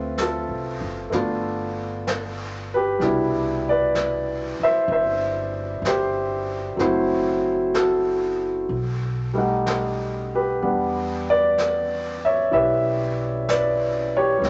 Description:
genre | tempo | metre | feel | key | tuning
jazz ballad | 63 BPM | 4/4 | swing 69% on 8ths | unclear | A4 = 440 Hz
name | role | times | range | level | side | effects
warm baby grand piano | accompaniment | 0.0-14.5 s | B2 to F#5 | -23 LUFS | equal | none
upright bass | bass | 0.0-14.5 s | F#1 to E2 | -34 LUFS | equal | none
jazz brush drum kit | drums | 0.2-14.5 s | brushed snare drum, hi-hat, snare drum | -35 LUFS | equal | none
room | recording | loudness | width
moderate large studio reverb, RT60 1.2 s | nothing above 8.0 kHz | -23 LUFS | mono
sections
0.0-14.5 A section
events
none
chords
0.0 Dm7; 1.1 G7; 3.0 Cmaj9; 6.8 F#m7b5; 8.7 B7b13; 10.6 Em9

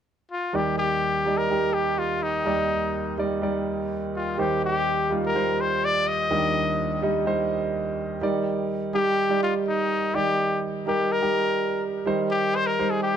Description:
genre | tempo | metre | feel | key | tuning
pop | 125 BPM | 4/4 | straight | Eb major | A4 = 444 Hz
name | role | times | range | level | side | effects
bright trumpet | melody | 0.3-13.2 s | Eb4 to Eb5 | -25 LUFS | left 3 dB | none
clear concert grand piano | accompaniment | 0.5-13.2 s | Eb2 to Eb5 | -25 LUFS | right 3 dB | none
room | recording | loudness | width
moderate studio reverb, RT60 0.7 s | dark, warm production | -22 LUFS | side -8 dB against mid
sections
0.5-8.2 A section; 8.2-13.2 B section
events
none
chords
0.0 N.C.; 0.5 Ebmaj7; 4.4 Cm/Eb; 8.2 Ebmaj7; 12.1 Cm/Eb

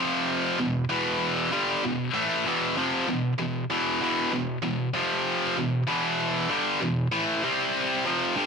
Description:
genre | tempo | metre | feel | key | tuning
metal | 96 BPM | 4/4 | straight | E phrygian | A4 = 441 Hz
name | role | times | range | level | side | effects
heavy high-gain guitar | solo | 0.0-8.5 s | E2 to C4 | -24 LUFS | equal | distortion
room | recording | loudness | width
digital ambience | none | -24 LUFS | side -5 dB against mid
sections
0.0-8.5 A section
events
half time 0.0-8.5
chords
0.0 F5; 0.6 Em; 4.9 F5; 5.6 Em; 7.4 C5

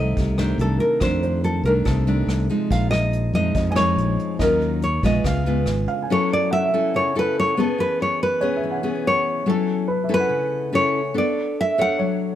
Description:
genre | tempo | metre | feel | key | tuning
bossa nova | 142 BPM | 4/4 | straight | F# minor from 6.1 s | A4 = 440 Hz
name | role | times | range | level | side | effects
nylon-string guitar | melody | 0.0-12.2 s | A4 to F#5 | -22 LUFS | equal | none
nylon-string guitar | accompaniment | 0.0-12.4 s | F2 to C#5 | -23 LUFS | left 2 dB | none
warm baby grand piano | accompaniment | 0.0-12.4 s | A4 to Ab5 | -31 LUFS | right 3 dB | none
fingered electric bass | bass | 0.0-5.9 s | Ab1 to F2 | -22 LUFS | equal | none
vintage brush drum kit | drums | 0.2-6.0 s | hi-hat, kick drum, rim click | -27 LUFS | equal | none
room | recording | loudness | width
light reverb | none | -18 LUFS | side -11 dB against mid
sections
0.0-6.1 A section; 6.1-12.4 B section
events
none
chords
0.0 F6; 2.7 Bb7sus4; 4.4 Ebm9; 5.2 Db7; 6.1 F#m7; 7.8 C#m7/E; 9.5 F#m7; 11.2 Bm9

